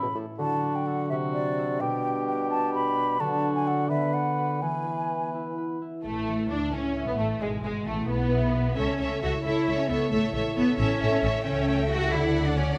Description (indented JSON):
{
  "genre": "classical",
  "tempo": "82-91 BPM (dotted quarters)",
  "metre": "6/8",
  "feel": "straight",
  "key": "A major from 3.2 s",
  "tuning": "A4 = 439 Hz",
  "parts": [
    { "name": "mellow cor anglais", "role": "second line", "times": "0.0-5.8 s", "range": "E4 to B4", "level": "-36 LUFS", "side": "equal", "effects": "none" },
    { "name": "mellow hollow silver concert flute", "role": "second line", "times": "0.0-5.3 s", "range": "D5 to B5", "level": "-31 LUFS", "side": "equal", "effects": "none" },
    { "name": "mellow bassoon", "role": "accompaniment", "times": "0.0-5.8 s", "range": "A2 to E3", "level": "-36 LUFS", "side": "equal", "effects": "none" },
    { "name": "mellow French horn section", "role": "sustained chords", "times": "0.0-5.8 s", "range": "E3 to E4", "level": "-35 LUFS", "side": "equal", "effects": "none" },
    { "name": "concert harp", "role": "arpeggios", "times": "0.0-12.8 s", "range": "A2 to E5", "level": "-34 LUFS", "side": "equal", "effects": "none" },
    { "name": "warm symphonic violin section", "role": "melody", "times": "6.0-12.7 s", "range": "G#3 to G5", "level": "-39 LUFS", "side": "equal", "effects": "none" },
    { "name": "warm symphonic violin section", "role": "second line", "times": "6.0-12.8 s", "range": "G#3 to E5", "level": "-36 LUFS", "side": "equal", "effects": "none" },
    { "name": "warm symphonic viola section", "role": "accompaniment", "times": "6.1-12.7 s", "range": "G#3 to A4", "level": "-35 LUFS", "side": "equal", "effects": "none" },
    { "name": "rich symphonic double bass section", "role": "bass", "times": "6.1-12.8 s", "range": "G#1 to D2", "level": "-32 LUFS", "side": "equal", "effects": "none" },
    { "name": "warm symphonic cello section", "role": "bass", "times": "6.1-12.8 s", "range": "G#3 to F#4", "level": "-31 LUFS", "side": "equal", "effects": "none" }
  ],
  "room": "moderate recital hall reverb, RT60 1.6 s",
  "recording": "none",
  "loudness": "-27 LUFS",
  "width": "mono",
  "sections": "0.0-6.1 A section; 6.1-12.8 B section",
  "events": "none",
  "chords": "0.4 D; 1.1 D7/C; 1.8 G/B; 3.2 D; 3.9 Bm/D; 4.6 E; 6.1 A; 7.4 E/G#; 8.8 A/C#; 10.1 A; 11.5 A7/C#; 12.1 D"
}